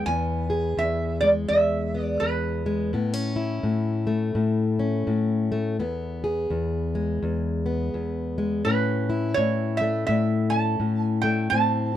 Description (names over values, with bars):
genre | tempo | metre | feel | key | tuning
acoustic country blues, solo or duo | 84 BPM | 4/4 | swing 60% on 8ths | unclear | A4 = 439 Hz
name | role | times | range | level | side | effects
lap resonator guitar | melody | 0.0-12.0 s | B4 to A5 | -24 LUFS | right 3 dB | none
fingerpicked plugged-in steel-string acoustic guitar | accompaniment | 0.0-12.0 s | E2 to G#4 | -24 LUFS | left 2 dB | none
room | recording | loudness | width
light reverb | dry, close 1970s-style studio recording | -22 LUFS | side -11 dB against mid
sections
0.0-12.0 A section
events
none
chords
0.0 E; 2.9 A; 5.8 E; 8.6 A